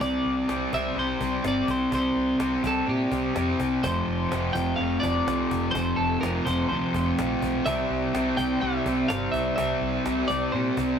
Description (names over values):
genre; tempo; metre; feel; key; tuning
rock, shoegaze and dream pop; 126 BPM; 4/4; straight; unclear; A4 = 437 Hz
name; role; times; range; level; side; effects
twelve-string electric guitar; melody; 0.0-11.0 s; G4 to G5; -30 LUFS; equal; none
fuzz guitar; riff; 0.0-11.0 s; F2 to C4; -25 LUFS; equal; distortion
vintage muted fingered electric bass; bass; 0.0-10.9 s; F1 to Bb2; -33 LUFS; right 1 dB; none
cajon; drums; 0.0-10.9 s; none; -35 LUFS; equal; none
room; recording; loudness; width
moderate studio ambience, RT60 0.5 s; rough rehearsal-room recording; -23 LUFS; side -7 dB against mid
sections
0.0-11.0 A section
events
none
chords
0.0 Csus2; 3.8 F5; 7.7 C